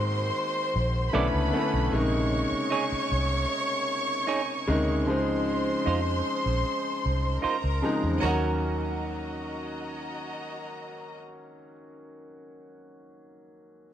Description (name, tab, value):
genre	soul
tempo	76 BPM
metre	4/4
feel	straight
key	Eb dorian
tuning	A4 = 441 Hz
part	warm symphonic violin section	second line	0.0-11.2 s	Gb4 to Db6	-31 LUFS	equal	none
part	clear concert grand piano	accompaniment	0.0-13.9 s	C3 to Gb4	-30 LUFS	left 1 dB	none
part	vintage muted fingered electric bass	bass	0.0-11.2 s	Bb1 to Ab2	-28 LUFS	equal	none
part	semi-hollow electric guitar	riff	1.1-11.8 s	Db4 to D5	-33 LUFS	right 6 dB	spring reverb
room	light reverb, small room ambience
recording	none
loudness	-25 LUFS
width	side -10 dB against mid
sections	0.0-8.2 A section; 8.2-11.4 B section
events	none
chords	0.0 Ab9; 1.1 Bm11; 1.9 Bbm11; 5.1 Dbmaj9; 8.2 Ebm7